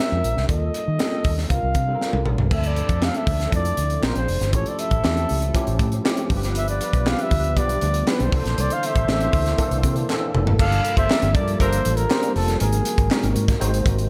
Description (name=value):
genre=polished 1980s jazz-funk pop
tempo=119 BPM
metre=4/4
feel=straight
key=unclear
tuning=A4 = 440 Hz
part: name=breathy flugelhorn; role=melody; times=0.0-13.3 s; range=Ab4 to F5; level=-28 LUFS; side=equal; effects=digital delay
part: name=tine electric piano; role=accompaniment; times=0.0-14.1 s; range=E3 to C5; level=-30 LUFS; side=equal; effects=overdrive, ensemble chorus
part: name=crisp fusion drum kit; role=drums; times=0.0-14.1 s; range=crash cymbal, hi-hat, kick drum, snare drum, toms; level=-25 LUFS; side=equal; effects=gated reverb
part: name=vintage muted fingered electric bass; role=bass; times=0.1-14.1 s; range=F1 to Eb3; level=-26 LUFS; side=equal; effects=none
part: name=mellow horn section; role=second line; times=2.5-11.8 s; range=F3 to D5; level=-35 LUFS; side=equal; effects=none
part: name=group handclap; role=percussion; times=3.0-13.2 s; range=none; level=-40 LUFS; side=equal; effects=none
part: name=warbly tape-like pad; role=sustained chords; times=6.6-14.1 s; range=Bb2 to A4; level=-35 LUFS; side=equal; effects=none
room=light reverb, small room ambience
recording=none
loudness=-21 LUFS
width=mono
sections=0.0-2.5 A section; 2.5-10.6 B section; 10.6-14.1 C section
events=drum fill 2.0-2.5, 10.1-10.6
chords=0.5 Ebadd9; 1.5 C9sus4; 2.5 Dm7; 4.0 Bb9; 4.5 A7b13; 6.3 G7; 8.3 C13; 10.6 Gm9; 12.6 Ab9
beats=| 0.49 0.99 1.50 2.00 | 2.51 3.02 3.52 4.03 | 4.53 5.04 5.54 6.05 | 6.55 7.06 7.56 8.07 | 8.57 9.08 9.58 10.08 | 10.59 11.09 11.59 12.10 | 12.60 13.10 13.61